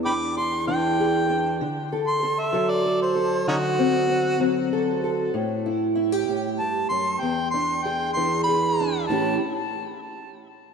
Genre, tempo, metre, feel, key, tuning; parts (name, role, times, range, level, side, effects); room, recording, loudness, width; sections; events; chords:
acoustic country blues, solo or duo; 64 BPM (dotted quarters); 12/8; straight; A4 = 439 Hz
fingerpicked steel-string acoustic guitar; accompaniment; 0.0-9.4 s; E2 to A4; -24 LUFS; equal; wide subtle chorus
warm harmonica; melody; 0.1-9.4 s; C#4 to D6; -25 LUFS; equal; ping-pong delay
wet lush hall reverb, RT60 2.8 s; dreamy mix soaked in reverb; -21 LUFS; side -6 dB against mid
0.0-9.1 A section; 9.1-10.7 B section
0.0 E7; 1.6 D7; 5.3 A5; 7.2 E7; 9.1 A7